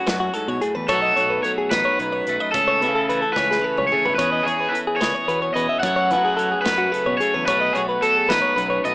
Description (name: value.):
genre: math rock and midwest emo.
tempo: 73 BPM (dotted quarters).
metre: 6/8.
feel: straight.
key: unclear.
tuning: A4 = 440 Hz.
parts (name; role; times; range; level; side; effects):
crunchy overdriven guitar; melody; 0.0-8.9 s; F#4 to F#5; -20 LUFS; equal; none.
twelve-string electric guitar; accompaniment; 0.0-8.9 s; E2 to G#4; -28 LUFS; right 1 dB; none.
direct-recorded clean electric guitar; arpeggios; 0.0-8.9 s; F#4 to E5; -23 LUFS; left 1 dB; warbly pitch drift.
growling fingered electric bass; bass; 0.1-8.9 s; G#1 to F#3; -30 LUFS; equal; overdrive.
modern studio drum kit; drums; 0.1-8.9 s; hi-hat, kick drum, snare drum, toms; -28 LUFS; equal; none.
room: light reverb, small room ambience.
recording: rough home demo mix, small speaker sound.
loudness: -17 LUFS.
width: side -23 dB against mid.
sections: 0.0-8.9 A section.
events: drum fill 3.4-4.2.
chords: 0.0 F#m11; 0.9 B7; 2.5 Amaj7/C#; 4.2 E6; 5.8 F#m11; 7.5 B7.